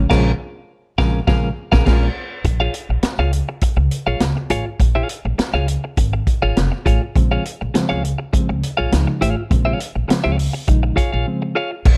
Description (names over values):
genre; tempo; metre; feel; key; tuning
funk; 102 BPM; 4/4; straight; Bb minor; A4 = 441 Hz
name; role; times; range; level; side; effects
reed electric piano; stabs; 0.0-2.1, 7.2-11.5 s; Db3 to Ab4; -24 LUFS; equal; medium tremolo
upright bass; bass; 0.0-12.0 s; F1 to Db2; -22 LUFS; equal; none
clean electric guitar; accompaniment; 0.1-11.9 s; Db4 to F5; -25 LUFS; equal; none
vintage drum kit; drums; 0.1-12.0 s; crash cymbal, hi-hat, kick drum, snare drum; -21 LUFS; equal; none
room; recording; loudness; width
studio ambience; none; -19 LUFS; mono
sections
0.0-2.5 A section; 2.5-11.9 B section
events
band accent 0.1-2.5; break 11.3-11.9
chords
0.0 Bbm7